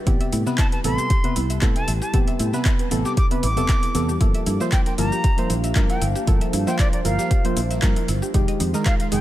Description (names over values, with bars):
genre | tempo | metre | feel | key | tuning
deep house | 116 BPM | 4/4 | swing 54% on 16ths | unclear | A4 = 436 Hz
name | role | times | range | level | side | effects
airy breathy pad | sustained chords | 0.0-9.2 s | G3 to C5 | -34 LUFS | equal | none
mallet-like synth pluck | arpeggios | 0.0-9.2 s | Eb4 to E5 | -34 LUFS | right 2 dB | chorus, sidechain pumping, dub echo
percussive organ stab | stabs | 0.1-9.2 s | C3 to C5 | -25 LUFS | equal | chorus, sidechain pumping, digital delay
fingered electric bass | bass | 0.1-9.2 s | E1 to A2 | -24 LUFS | equal | sidechain pumping
deep house drum kit | drums | 0.1-9.2 s | handclaps, hi-hat, shaker | -30 LUFS | left 1 dB | overdrive
dusty soul sampler-style drum kit | drums | 0.1-9.2 s | hi-hat, snare drum | -40 LUFS | equal | none
electronic kick drum | drums | 0.1-9.0 s | none | -20 LUFS | equal | overdrive
bright concert flute | melody | 0.6-9.2 s | D5 to D6 | -29 LUFS | equal | dub echo
warbly tape-like pad | texture | 5.1-9.2 s | D4 to F5 | -33 LUFS | right 1 dB | chorus, built-in reverb, sidechain pumping
room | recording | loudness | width
digital ambience | none | -18 LUFS | side -14 dB against mid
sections
0.0-9.2 A section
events
none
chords
0.1 Am9; 4.2 Gm9; 8.3 Fm9